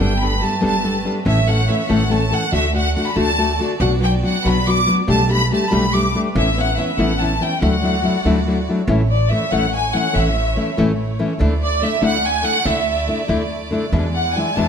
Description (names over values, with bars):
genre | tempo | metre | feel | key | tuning
mexican folk, mariachi | 95 BPM (dotted quarters) | 6/8 | straight | D major, A major from 8.9 s | A4 = 440 Hz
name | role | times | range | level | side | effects
clear studio violin section | melody | 0.0-14.7 s | D5 to D6 | -20 LUFS | equal | none
nylon-string guitar | accompaniment | 0.0-14.7 s | E2 to A4 | -19 LUFS | left 2 dB | none
clear studio violin section | sustained chords | 0.0-14.7 s | G#3 to D5 | -31 LUFS | right 2 dB | none
upright bass | bass | 0.0-14.7 s | G1 to E2 | -21 LUFS | right 1 dB | none
room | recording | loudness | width
moderate recital hall reverb, RT60 1.3 s | dark, warm production | -15 LUFS | side -7 dB against mid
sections
0.0-8.9 A section; 8.9-14.7 B section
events
none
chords
0.0 Gadd9; 1.3 A; 2.5 D; 3.8 Bm; 5.1 Gadd9/B; 6.3 Aadd9; 7.6 Dadd9; 8.9 A; 11.4 Dsus2; 13.9 E7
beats
0.62 | 1.26 1.89 | 2.53 3.16 | 3.80 4.44 | 5.08 5.71 | 6.34 6.98 | 7.61 8.24 | 8.88 9.51 | 10.15 10.78 | 11.41 12.04 | 12.66 13.30 | 13.93 14.56